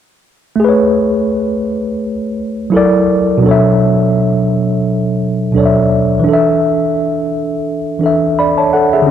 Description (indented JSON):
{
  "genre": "hip hop",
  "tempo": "85 BPM",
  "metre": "4/4",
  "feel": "swing 56% on 16ths",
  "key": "A major",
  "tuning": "A4 = 438 Hz",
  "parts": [
    { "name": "mellow tine electric piano", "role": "accompaniment", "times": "0.6-9.1 s", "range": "B2 to B5", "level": "-11 LUFS", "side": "equal", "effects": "medium stereo tremolo, low-pass filter" }
  ],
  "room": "wet plate reverb, RT60 3.4 s",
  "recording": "none",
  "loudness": "-11 LUFS",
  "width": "side -9 dB against mid",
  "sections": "0.6-9.1 A section",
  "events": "none",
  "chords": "0.6 Amaj9; 2.7 F#7alt; 3.4 Bm11; 6.3 E7sus4"
}